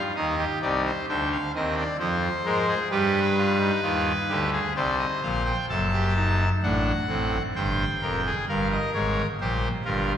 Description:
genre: classical, baroque-style 3-part fugue for pipe organ.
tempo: 65 BPM.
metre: 3/4.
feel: straight.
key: unclear.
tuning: A4 = 440 Hz.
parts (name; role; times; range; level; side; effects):
pipe organ, trumpet; solo; 0.0-10.1 s; F1 to A5; -22 LUFS; equal; none.
room: wet church reverb, RT60 3.3 s.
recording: minimal, uncompressed stereo recording, vinyl crackle.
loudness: -22 LUFS.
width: side -9 dB against mid.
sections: 0.0-5.7 A section; 5.7-10.2 B section.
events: none.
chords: 0.2 Cm; 2.0 Fmadd11; 2.9 G7; 4.8 Cm; 5.7 D7/F#; 7.6 Gm; 8.5 Eb7/G (rootless).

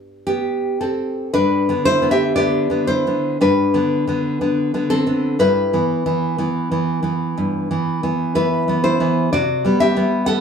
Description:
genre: romantic piece for solo classical guitar.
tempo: 55-65 BPM.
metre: 4/4.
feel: rubato.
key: G major.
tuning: A4 = 440 Hz.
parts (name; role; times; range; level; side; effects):
nylon-string guitar; solo; 0.0-10.4 s; G2 to F#5; -16 LUFS; equal; none.
room: moderate studio reverb, RT60 0.7 s.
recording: band playing live in one room, small room reverb.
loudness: -16 LUFS.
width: side -6 dB against mid.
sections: 0.0-1.3 A section; 1.3-10.4 B section.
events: none.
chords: 0.0 G; 3.4 Bm/G; 5.4 Em/G; 9.3 C5.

